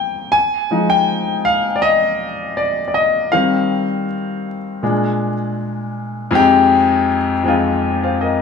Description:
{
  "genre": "R&B",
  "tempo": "80 BPM",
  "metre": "4/4",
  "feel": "swing 53% on 16ths",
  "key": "F dorian",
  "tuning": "A4 = 443 Hz",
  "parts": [
    { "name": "warm grand piano", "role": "solo", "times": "0.0-8.4 s", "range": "F2 to Ab5", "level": "-14 LUFS", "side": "left 3 dB", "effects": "none" }
  ],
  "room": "light reverb",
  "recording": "vinyl crackle, studio ambience",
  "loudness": "-14 LUFS",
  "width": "side -6 dB against mid",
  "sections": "0.0-6.3 A section; 6.3-8.4 B section",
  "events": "grand piano solo 0.0-6.3",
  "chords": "0.3 Fm7; 3.3 Eb69; 4.8 Bb7; 6.3 Fm9"
}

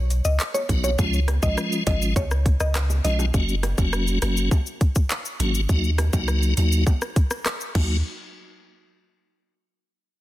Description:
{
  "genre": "dancehall",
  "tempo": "102 BPM",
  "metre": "4/4",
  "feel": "straight",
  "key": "Eb minor",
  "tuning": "A4 = 439 Hz",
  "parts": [
    { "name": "punchy sub bass", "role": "bass", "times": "0.0-8.0 s", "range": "F1 to Eb2", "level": "-22 LUFS", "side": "equal", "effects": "none" },
    { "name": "island pop drum kit", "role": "drums", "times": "0.1-7.9 s", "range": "crash cymbal, handclaps, hi-hat, kick drum, rim click, shaker", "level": "-24 LUFS", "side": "equal", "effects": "soft clipping on snare" },
    { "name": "mallet-like synth pluck", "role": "melody", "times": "0.2-3.2 s", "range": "Db5 to D#5", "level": "-29 LUFS", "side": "left 1 dB", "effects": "chorus, ping-pong delay" },
    { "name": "bongos", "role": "percussion", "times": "0.5-8.0 s", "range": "none", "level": "-37 LUFS", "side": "right 9 dB", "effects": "none" },
    { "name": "tonewheel organ", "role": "accompaniment", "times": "0.7-8.0 s", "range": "F3 to F#4", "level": "-26 LUFS", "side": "left 1 dB", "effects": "chorus vibrato, fast rotary speaker" }
  ],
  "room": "digital ambience",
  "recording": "dense, heavily limited modern master",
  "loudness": "-20 LUFS",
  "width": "side -15 dB against mid",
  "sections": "0.0-3.3 A section; 3.3-8.0 B section; 8.0-10.2 C section",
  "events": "none",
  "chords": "0.0 B; 1.0 Db; 3.3 Gb; 5.7 Ebm; 8.0 N.C."
}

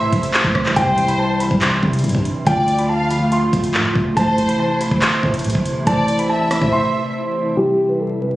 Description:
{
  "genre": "hip hop, drill",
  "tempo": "141 BPM",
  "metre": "4/4",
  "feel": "half-time",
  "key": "A minor",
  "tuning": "A4 = 440 Hz",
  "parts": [
    { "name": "dark concert grand piano", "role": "melody", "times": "0.0-8.4 s", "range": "G4 to C6", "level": "-21 LUFS", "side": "equal", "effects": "low-pass filter, tape echo" },
    { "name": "rich studio violin section", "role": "second line", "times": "0.0-7.1 s", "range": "C5 to F5", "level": "-26 LUFS", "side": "left 1 dB", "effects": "tape echo" },
    { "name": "muted felt-like synth keys", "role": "accompaniment", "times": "0.0-8.4 s", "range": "C3 to C5", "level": "-20 LUFS", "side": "equal", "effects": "chorus, low-pass filter" },
    { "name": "hollow soft pad", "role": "sustained chords", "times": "0.0-8.4 s", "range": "C3 to F4", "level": "-25 LUFS", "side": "right 1 dB", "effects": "ensemble chorus, low-pass filter" },
    { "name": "long sustained 808-style bass", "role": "bass", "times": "0.0-6.7 s", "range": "G1 to C3", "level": "-25 LUFS", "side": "equal", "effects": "none" },
    { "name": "drill drum kit", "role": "drums", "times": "0.1-6.7 s", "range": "handclaps, hi-hat, kick drum, rim click", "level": "-20 LUFS", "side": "equal", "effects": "none" }
  ],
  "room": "little or no reverb",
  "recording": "recorded on a phone in the room, studio reverb, vinyl crackle, compression",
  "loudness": "-15 LUFS",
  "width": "side -16 dB against mid",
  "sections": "0.0-7.6 A section",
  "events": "break 6.7-7.6",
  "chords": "0.0 Am; 0.8 C; 2.5 Dm; 4.2 Am; 7.6 C"
}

